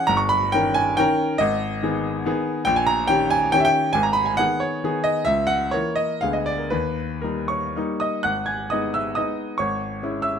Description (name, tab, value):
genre	classical, romantic triple-time dance for piano with dotted rhythms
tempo	111-149 BPM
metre	3/4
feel	rubato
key	G# minor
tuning	A4 = 441 Hz
part	warm grand piano	solo	0.0-10.4 s	G1 to G#6	-20 LUFS	equal	none
room	moderate large studio reverb, RT60 1.2 s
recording	close, detailed microphones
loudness	-20 LUFS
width	side -7 dB against mid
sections	0.0-8.3 A section; 8.3-10.4 A section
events	none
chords	0.1 D#7/G; 1.4 G#m; 2.7 D#7/A#; 4.0 G#m; 5.3 A#dim/C#; 6.2 Ddim7; 6.7 D#; 8.3 G#m; 9.6 C#m/G#